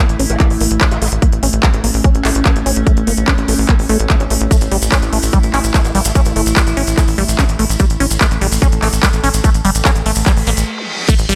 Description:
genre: psychedelic trance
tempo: 146 BPM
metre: 4/4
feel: straight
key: A major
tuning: A4 = 439 Hz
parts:
  - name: evolving wavetable pad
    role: sustained chords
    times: 0.0-11.4 s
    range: A3 to A4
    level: -24 LUFS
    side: equal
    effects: chorus, built-in reverb, phaser, sidechain pumping
  - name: liquid acid bass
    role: riff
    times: 0.0-11.3 s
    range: G3 to C#4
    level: -23 LUFS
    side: equal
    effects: phaser, cassette tape, sidechain pumping, delay
  - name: tight sequencer bass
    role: bass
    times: 0.1-11.4 s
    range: G1 to A1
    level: -20 LUFS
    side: equal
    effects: none
  - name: techno drum kit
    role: drums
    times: 0.1-11.4 s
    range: crash cymbal, handclaps, hi-hat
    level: -22 LUFS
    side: equal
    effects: none
  - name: vowel-sweep wobble bass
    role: second line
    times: 0.3-1.1, 5.7-6.3 s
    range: A3 to E4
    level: -30 LUFS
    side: equal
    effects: ensemble chorus, sidechain pumping, high-pass filter, tape echo
  - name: electronic kick drum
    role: drums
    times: 0.4-11.2 s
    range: none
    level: -15 LUFS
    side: equal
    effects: overdrive
  - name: maracas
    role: percussion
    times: 4.5-11.3 s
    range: none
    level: -26 LUFS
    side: equal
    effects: none
  - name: reverse cymbal and zap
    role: sound effects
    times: 10.4-11.1 s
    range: none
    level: -25 LUFS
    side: equal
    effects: none
room: light reverb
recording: none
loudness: -14 LUFS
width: mono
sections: 0.0-11.1 A section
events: filter sweep on acid bass 0.0-11.1; reverse cymbal 10.4-11.1; stop 10.7-11.1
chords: 0.0 A5

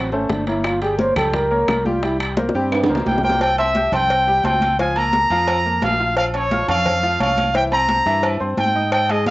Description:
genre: latin, salsa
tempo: 174 BPM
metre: 4/4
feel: straight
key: unclear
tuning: A4 = 441 Hz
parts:
  - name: breathy trombone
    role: melody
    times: 0.0-2.9 s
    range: G3 to C5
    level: -21 LUFS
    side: right 1 dB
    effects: cassette tape
  - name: bright baby grand piano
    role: accompaniment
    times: 0.0-9.3 s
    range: E3 to G6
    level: -24 LUFS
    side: left 2 dB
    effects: none
  - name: fingered electric bass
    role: bass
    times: 0.0-9.3 s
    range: G1 to Ab2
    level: -25 LUFS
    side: equal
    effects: none
  - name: bongos and cowbell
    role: percussion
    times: 0.1-9.3 s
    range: none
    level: -26 LUFS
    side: left 2 dB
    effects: none
  - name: congas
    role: percussion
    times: 0.1-9.3 s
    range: none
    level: -27 LUFS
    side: left 1 dB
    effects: none
  - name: timbales and agogo bells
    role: percussion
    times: 0.3-9.3 s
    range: none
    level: -26 LUFS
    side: right 2 dB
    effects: none
  - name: claves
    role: percussion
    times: 0.6-2.9, 8.9-9.1 s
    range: none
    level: -27 LUFS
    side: left 3 dB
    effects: none
  - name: clear trumpet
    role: melody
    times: 3.1-9.3 s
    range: Db5 to Bb5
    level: -18 LUFS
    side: equal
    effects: cassette tape
room: moderate studio ambience, RT60 0.5 s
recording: home recording on cassette, nothing above 7.8 kHz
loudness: -16 LUFS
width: side -18 dB against mid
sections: 0.0-3.4 A section; 3.4-9.3 B section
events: trombone solo 0.0-3.4; drum fill 2.4-3.4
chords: 0.0 D7(no3); 0.6 Gdim; 2.0 C5; 3.4 C; 4.8 Db6; 6.2 Bbm; 7.5 C

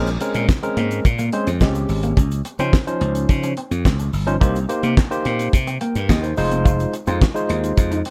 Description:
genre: early-eighties boogie funk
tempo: 107 BPM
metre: 4/4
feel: straight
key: Bb dorian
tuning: A4 = 440 Hz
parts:
  - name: barky tine electric piano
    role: accompaniment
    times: 0.0-8.0 s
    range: F3 to G5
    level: -25 LUFS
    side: equal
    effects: none
  - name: electric guitar at the edge of break-up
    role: riff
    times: 0.0-8.1 s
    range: Ab3 to F4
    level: -30 LUFS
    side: equal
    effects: ensemble chorus
  - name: slap bass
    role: bass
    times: 0.0-8.0 s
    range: F1 to Db3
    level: -24 LUFS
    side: equal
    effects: none
  - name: damped 70s drum kit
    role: drums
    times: 0.1-8.1 s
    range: handclaps, hi-hat, kick drum, snare drum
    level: -20 LUFS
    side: equal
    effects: none
  - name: egg shaker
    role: percussion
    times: 0.1-8.0 s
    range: none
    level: -46 LUFS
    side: equal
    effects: none
room: small room reverb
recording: dark, warm production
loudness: -19 LUFS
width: mono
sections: 0.0-8.1 A section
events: none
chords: 0.0 Bbm9; 2.2 Dbmaj9; 4.4 Cm7; 6.4 Fm7

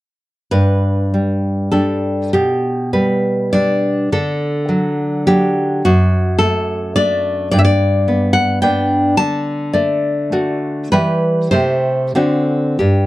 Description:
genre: romantic piece for solo classical guitar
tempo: 88-112 BPM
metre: 3/4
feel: rubato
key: G major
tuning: A4 = 439 Hz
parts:
  - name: nylon-string guitar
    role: solo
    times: 0.5-13.1 s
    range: F#2 to A5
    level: -14 LUFS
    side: equal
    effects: none
room: moderate booth ambience, RT60 0.2 s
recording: dry, close 1970s-style studio recording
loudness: -14 LUFS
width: side -17 dB against mid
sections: 0.5-13.1 A section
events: none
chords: 0.5 G; 2.4 G/B; 4.1 D; 5.9 D/F#; 7.5 G; 9.2 D; 10.9 Em; 11.5 Am7/C; 12.1 D7

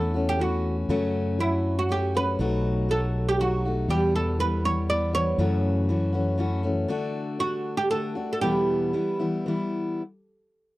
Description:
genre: acoustic folk duo or small band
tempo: 120 BPM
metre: 3/4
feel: straight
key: E dorian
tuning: A4 = 440 Hz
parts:
  - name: oud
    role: melody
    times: 0.0-9.7 s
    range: E4 to D5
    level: -26 LUFS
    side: right 2 dB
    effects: none
  - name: picked steel-string acoustic guitar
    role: accompaniment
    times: 0.0-10.0 s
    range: E2 to G4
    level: -27 LUFS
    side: left 2 dB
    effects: none
  - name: fretless electric bass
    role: bass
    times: 0.0-6.8 s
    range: B1 to F#2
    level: -26 LUFS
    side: equal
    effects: none
room: light reverb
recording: dry, close 1970s-style studio recording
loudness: -23 LUFS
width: side -18 dB against mid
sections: 0.0-10.0 A section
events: slowing down 6.9-10.0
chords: 0.0 A6/E; 0.9 F#m; 2.4 B7; 3.9 Em; 5.4 F#m7; 6.9 D; 8.4 Em

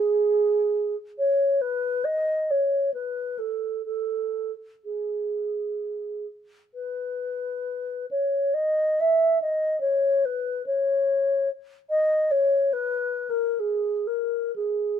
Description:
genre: classical, free, expressive piece for unaccompanied alto flute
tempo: 56-74 BPM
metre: 3/4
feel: rubato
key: G# minor from 6.8 s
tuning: A4 = 441 Hz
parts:
  - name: mellow hollow wooden-headed alto flute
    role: solo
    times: 0.0-15.0 s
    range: G#4 to E5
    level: -22 LUFS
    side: equal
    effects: none
room: light reverb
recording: close, detailed microphones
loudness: -23 LUFS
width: side -8 dB against mid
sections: 0.0-15.0 A section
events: none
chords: none

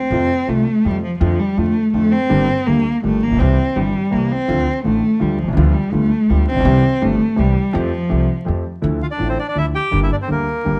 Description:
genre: tango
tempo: 165 BPM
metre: 3/4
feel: rubato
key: F major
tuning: A4 = 440 Hz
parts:
  - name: rich cello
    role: second line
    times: 0.0-8.5 s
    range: F3 to C4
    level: -20 LUFS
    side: equal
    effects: none
  - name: warm concert grand piano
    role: accompaniment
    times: 0.1-10.8 s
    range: G1 to G4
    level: -23 LUFS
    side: equal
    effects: none
  - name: upright bass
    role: bass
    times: 0.1-10.8 s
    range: G1 to F2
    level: -22 LUFS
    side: equal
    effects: none
  - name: bandoneon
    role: melody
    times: 9.0-10.8 s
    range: Bb3 to G5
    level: -23 LUFS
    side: equal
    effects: none
room: light reverb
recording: close, detailed microphones, vinyl crackle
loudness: -17 LUFS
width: mono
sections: 0.1-8.8 A section; 8.8-10.8 B section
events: cello solo 0.1-8.8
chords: 0.1 F; 1.2 Dm/F; 2.3 Gm; 3.4 C; 4.5 Dm; 5.6 G7/D; 6.7 C; 7.7 Fadd9; 8.8 Dmadd9; 9.9 Gm

